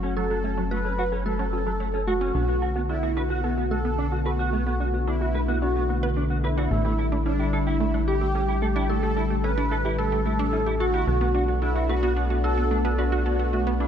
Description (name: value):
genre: synthwave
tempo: 110 BPM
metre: 4/4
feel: straight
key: B minor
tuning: A4 = 435 Hz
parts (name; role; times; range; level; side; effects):
- soft supersaw; melody; 0.0-13.9 s; D4 to B4; -28 LUFS; right 1 dB; ping-pong delay
- soft synth bell; second line; 0.0-13.9 s; D4 to B4; -34 LUFS; left 1 dB; chorus, phaser, ping-pong delay
- lush unison pad; sustained chords; 0.0-13.9 s; D3 to D4; -30 LUFS; left 1 dB; chorus
- wide unison pluck; arpeggios; 0.0-13.9 s; A3 to C#5; -32 LUFS; right 2 dB; ping-pong delay
- mellow electric guitar; riff; 0.0-13.9 s; F#3 to B4; -33 LUFS; right 2 dB; ensemble chorus, low-pass filter, ping-pong delay
- chorused synth bass; bass; 0.0-13.9 s; F#1 to B1; -26 LUFS; equal; none
room: moderate lush hall reverb, RT60 2.2 s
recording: bright 1980s-style digital production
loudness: -22 LUFS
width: side -8 dB against mid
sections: 0.0-13.9 A section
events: filter sweep on analog synth pad 0.0-13.9; filter sweep on synth arpeggio sound 0.0-13.9; filter sweep on clean electric guitar 0.0-13.9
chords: 0.0 F#m; 2.3 Bm7; 6.7 A7sus4; 11.1 Bm7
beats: | 0.17 0.71 1.26 1.80 | 2.35 2.89 3.44 3.98 | 4.53 5.08 5.62 6.17 | 6.71 7.26 7.80 8.35 | 8.89 9.44 9.98 10.53 | 11.08 11.62 12.17 12.71 | 13.26 13.80